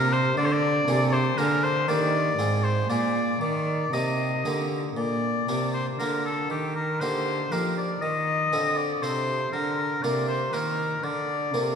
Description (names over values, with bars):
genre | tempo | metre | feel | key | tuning
classical, baroque-style sonata movement with continuo | 119 BPM | 3/4 | straight | Eb major, Bb major from 5.0 s | A4 = 440 Hz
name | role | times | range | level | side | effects
clear oboe | melody | 0.0-11.8 s | G4 to Eb5 | -26 LUFS | left 2 dB | none
harpsichord | accompaniment | 0.0-11.8 s | Ab2 to Bb4 | -30 LUFS | equal | none
dark cello | bass | 0.0-11.8 s | Ab2 to F3 | -28 LUFS | right 2 dB | none
room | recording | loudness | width
wet concert hall reverb, RT60 2.0 s | none | -23 LUFS | side -7 dB against mid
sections
0.0-5.0 A section; 5.0-11.8 A section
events
none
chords
0.4 Bb7; 1.9 Eb; 2.4 Fm/Ab; 2.9 Bb7; 3.4 Eb; 5.0 Bb; 6.5 Eb; 8.0 F7; 9.5 Bb